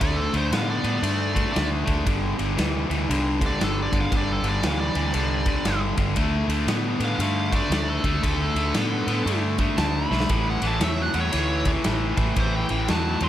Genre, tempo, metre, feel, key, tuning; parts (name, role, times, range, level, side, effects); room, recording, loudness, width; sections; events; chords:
blues rock power trio and southern rock; 117 BPM; 4/4; swing 63% on 8ths; D mixolydian; A4 = 440 Hz
biting lead guitar; second line; 0.0-13.3 s; A4 to C6; -29 LUFS; right 2 dB; overdrive
cranked stack guitar; riff; 0.0-13.3 s; G2 to B3; -25 LUFS; left 1 dB; overdrive
vintage muted fingered electric bass; bass; 0.0-13.3 s; G1 to A2; -27 LUFS; equal
big rock drum kit; drums; 0.0-13.3 s; kick drum, ride cymbal, snare drum; -27 LUFS; equal
studio reverb; -21 LUFS; side -12 dB against mid
0.0-13.3 A section
lead electric guitar solo 0.0-13.3; drum fill 10.0
0.0 D5; 2.1 G5; 6.2 D5; 10.3 A5